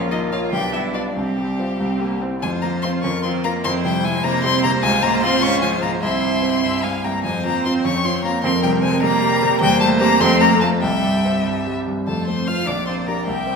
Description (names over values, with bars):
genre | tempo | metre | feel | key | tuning
quick classical-period movement for piano quintet | 93-103 BPM (dotted quarters) | 6/8 | rubato | F major from 9.6 s | A4 = 440 Hz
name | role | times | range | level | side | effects
bright cello | second line | 0.0-13.6 s | G3 to G4 | -23 LUFS | right 5 dB | none
rich violin | second line | 0.0-13.6 s | Bb3 to G5 | -26 LUFS | left 2 dB | none
clear grand piano | accompaniment | 0.0-13.6 s | Bb1 to D5 | -22 LUFS | left 1 dB | none
clear viola | accompaniment | 0.0-13.6 s | G3 to E5 | -26 LUFS | right 2 dB | none
clear violin | melody | 0.1-13.6 s | G4 to F6 | -22 LUFS | left 5 dB | none
room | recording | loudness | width
wet recital hall reverb, RT60 1.4 s | recorded in a church or concert hall | -16 LUFS | side -5 dB against mid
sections
0.0-2.4 A section; 2.4-12.1 B section; 12.1-13.6 C section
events
none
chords
0.0 Bbm; 0.5 G7/B; 1.2 Csus4; 1.8 C; 2.4 F5; 3.0 Bb5/F; 3.6 C/F; 4.8 Db; 6.0 C; 7.2 F5; 7.9 Bbm/F; 8.4 C5/F; 9.6 C/E; 10.2 F; 10.8 C; 12.1 F; 12.7 Gm/Bb